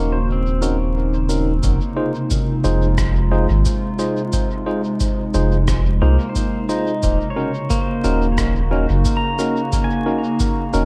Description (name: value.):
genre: ambient dub.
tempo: 89 BPM.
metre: 4/4.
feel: straight.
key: unclear.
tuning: A4 = 440 Hz.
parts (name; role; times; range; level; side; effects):
warbly tape-like pad; sustained chords; 0.0-10.8 s; C3 to Gb4; -26 LUFS; equal; chorus, built-in reverb.
pedal steel guitar; arpeggios; 0.0-1.9, 6.0-10.8 s; Bb3 to Bb5; -28 LUFS; equal; dub echo.
tine electric piano; stabs; 0.0-10.8 s; Db4 to C5; -26 LUFS; equal; low-pass filter, dub echo.
warm sub bass; bass; 0.0-10.8 s; Eb1 to C2; -20 LUFS; equal; none.
electronic cabasa and rim click; drums; 0.6-10.8 s; none; -32 LUFS; equal; dub echo.
electronic kick drum; drums; 1.6-10.5 s; none; -25 LUFS; equal; none.
room: light reverb.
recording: echo-heavy mix, vinyl crackle.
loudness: -19 LUFS.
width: mono.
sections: 0.0-1.6 A section; 1.6-10.8 B section.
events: none.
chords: 0.0 Ebm7; 1.6 Fm7; 7.0 Ebm7.